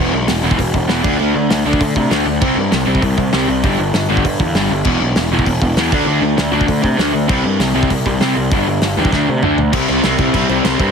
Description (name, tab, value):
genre	punk rock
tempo	197 BPM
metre	4/4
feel	straight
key	unclear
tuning	A4 = 440 Hz
part	raw garage guitar	riff	0.0-10.9 s	E2 to D4	-15 LUFS	left 1 dB	overdrive
part	fuzz picked electric bass	bass	0.0-10.9 s	E1 to D3	-19 LUFS	equal	overdrive
part	loose indie drum kit	drums	0.3-10.9 s	crash cymbal, hi-hat, kick drum, snare drum, toms	-19 LUFS	equal	none
room	little or no reverb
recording	heavily compressed radio sound, multiband compression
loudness	-13 LUFS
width	side -6 dB against mid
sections	0.0-9.7 A section; 9.7-10.9 B section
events	drum fill 9.1-9.7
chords	0.0 E5; 1.0 D5; 2.4 C5; 3.6 G5; 4.9 E5; 5.9 D5; 7.3 C5; 8.5 G5; 9.1 D5; 9.7 C5